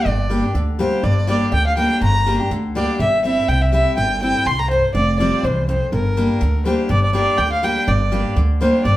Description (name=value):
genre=bluegrass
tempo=246 BPM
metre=4/4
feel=swing 55% on 8ths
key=G dorian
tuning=A4 = 440 Hz
part: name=dark fiddle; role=melody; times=0.0-9.0 s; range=Bb4 to C6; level=-20 LUFS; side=equal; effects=none
part: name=picked steel-string acoustic guitar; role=accompaniment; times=0.0-9.0 s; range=E2 to G4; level=-20 LUFS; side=left 1 dB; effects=none
part: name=upright bass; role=bass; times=0.1-9.0 s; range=F1 to D2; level=-20 LUFS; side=equal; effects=none
room=wet large studio reverb, RT60 0.8 s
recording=band playing live in one room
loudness=-15 LUFS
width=side -15 dB against mid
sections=0.0-6.9 A section; 6.9-9.0 A section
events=none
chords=0.0 Gm; 3.0 C/G; 5.0 Fsus2; 5.9 Gm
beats=| 0.06 0.31 0.55 0.80 | 1.04 1.29 1.53 1.78 | 2.02 2.27 2.51 2.75 | 3.00 3.24 3.49 3.73 | 3.98 4.22 4.46 4.71 | 4.95 5.20 5.44 5.68 | 5.93 6.17 6.42 6.66 | 6.91 7.15 7.39 7.64 | 7.88 8.12 8.37 8.61 | 8.85